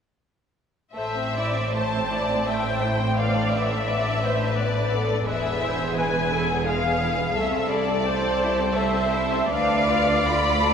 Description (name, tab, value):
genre	classical, slow romantic movement for string orchestra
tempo	74-88 BPM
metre	3/4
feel	rubato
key	A minor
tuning	A4 = 440 Hz
part	rich studio violin section	melody	0.9-10.7 s	C5 to B5	-26 LUFS	left 3 dB	none
part	rich studio double bass section	bass	0.9-10.7 s	E1 to D2	-29 LUFS	right 2 dB	none
part	clear studio violin section	second line	1.0-10.7 s	G#3 to D5	-28 LUFS	left 2 dB	none
part	rich studio viola section	accompaniment	1.0-10.7 s	G#4 to E5	-27 LUFS	right 1 dB	none
part	clear studio cello section	bass	1.0-10.7 s	C2 to A2	-28 LUFS	right 2 dB	none
room	wet cathedral reverb, RT60 4.0 s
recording	recorded in a church or concert hall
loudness	-21 LUFS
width	side -7 dB against mid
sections	1.0-10.7 A section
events	none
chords	1.0 Am; 3.2 D7sus2/A; 5.3 E; 7.4 Am/C; 9.5 Bdim/D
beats	| 0.96 1.75 2.48 | 3.18 3.88 4.57 | 5.27 5.97 6.67 | 7.37 8.06 8.77 | 9.51 10.25